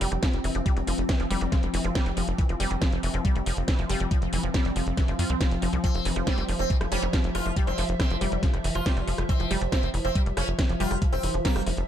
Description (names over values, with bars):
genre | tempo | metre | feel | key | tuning
psychedelic trance | 139 BPM | 4/4 | straight | unclear | A4 = 440 Hz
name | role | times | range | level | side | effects
evolving wavetable pad | sustained chords | 0.0-11.9 s | F3 to E5 | -34 LUFS | left 2 dB | chorus, built-in reverb, sidechain pumping
wide unison pluck | riff | 0.0-11.7 s | E3 to F4 | -32 LUFS | moving between left 3 dB and right 3 dB | auto-pan, sidechain pumping, dub echo
tight sequencer bass | bass | 0.0-11.8 s | F1 to F2 | -28 LUFS | equal | none
techno drum kit | drums | 0.0-11.9 s | hi-hat, rim click, snare drum | -32 LUFS | equal | none
electronic kick drum | drums | 0.2-11.5 s | none | -24 LUFS | equal | none
sitar | melody | 5.8-11.6 s | Bb3 to F4 | -32 LUFS | right 1 dB | phaser, sidechain pumping, dub echo
room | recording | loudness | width
little or no reverb | none | -23 LUFS | side -10 dB against mid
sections
0.0-11.9 A section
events
none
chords
0.0 F5